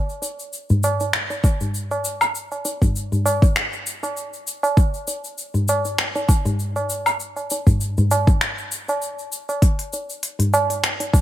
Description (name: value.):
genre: downtempo.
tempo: 99 BPM.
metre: 4/4.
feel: swing 55% on 16ths.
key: none.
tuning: none.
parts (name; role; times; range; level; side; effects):
afro-pop drum kit; drums; 0.1-11.2 s; finger snaps, hi-hat, shaker, woodblock; -24 LUFS; left 1 dB; none.
tabla; percussion; 0.2-11.2 s; none; -22 LUFS; equal; none.
electronic kick drum; drums; 1.4-11.2 s; none; -16 LUFS; equal; overdrive.
room: light reverb.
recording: none.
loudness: -19 LUFS.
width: side -13 dB against mid.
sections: 0.0-11.2 A section.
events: none.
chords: none.